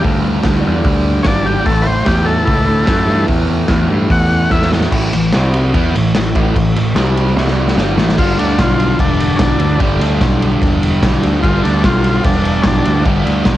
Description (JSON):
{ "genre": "garage rock duo or trio", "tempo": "148 BPM", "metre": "4/4", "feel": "straight", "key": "unclear", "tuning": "A4 = 439 Hz", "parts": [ { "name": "combo organ", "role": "melody", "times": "0.0-4.7, 8.2-13.1 s", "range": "C#4 to F#5", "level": "-17 LUFS", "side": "left 1 dB", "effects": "cassette tape" }, { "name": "fuzz guitar", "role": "riff", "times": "0.0-13.6 s", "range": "G2 to E4", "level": "-16 LUFS", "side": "equal", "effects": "distortion" }, { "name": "growling picked electric bass", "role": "bass", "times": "0.0-13.6 s", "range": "E1 to G2", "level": "-16 LUFS", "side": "equal", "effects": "overdrive" }, { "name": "raw garage drum kit", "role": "drums", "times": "0.0-13.6 s", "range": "crash cymbal, hi-hat, kick drum, ride cymbal, snare drum", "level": "-17 LUFS", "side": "equal", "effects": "cassette tape" } ], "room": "light reverb", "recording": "home recording on cassette", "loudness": "-11 LUFS", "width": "side -14 dB against mid", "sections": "0.0-4.9 A section; 4.9-8.2 B section; 8.2-13.6 C section", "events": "transistor combo organ solo 0.0-4.9; drum fill 4.5-4.9, 7.4-8.2", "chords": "0.0 G5; 1.7 A5; 5.3 C5; 5.7 A5; 7.0 C5; 7.8 A5; 8.2 G" }